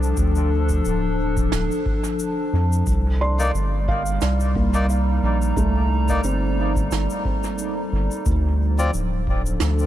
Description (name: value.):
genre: ambient dub.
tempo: 89 BPM.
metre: 4/4.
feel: swing 55% on 16ths.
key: C dorian.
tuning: A4 = 440 Hz.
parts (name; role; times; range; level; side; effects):
warbly tape-like pad; sustained chords; 0.0-9.9 s; F3 to Bb5; -25 LUFS; equal; chorus, built-in reverb.
felt-muted upright piano; arpeggios; 0.0-8.9 s; A3 to C6; -29 LUFS; right 1 dB; tape echo.
soft dub sub bass; bass; 0.0-9.9 s; D1 to F2; -21 LUFS; equal; none.
shaker and snare drum; drums; 0.0-9.9 s; none; -31 LUFS; right 4 dB; dub echo.
electronic kick drum; drums; 0.2-9.4 s; none; -26 LUFS; equal; none.
melodica; stabs; 3.4-8.9 s; Bb3 to D5; -30 LUFS; left 2 dB; dub echo.
room: light reverb, small room reverb.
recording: none.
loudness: -19 LUFS.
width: side -12 dB against mid.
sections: 0.0-9.9 A section.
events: none.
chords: 0.0 Dm7; 2.9 Cm9; 8.3 Dm7.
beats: | 0.17 0.85 1.52 2.20 | 2.87 3.54 4.22 4.89 | 5.57 6.24 6.92 7.59 | 8.26 8.94 9.61.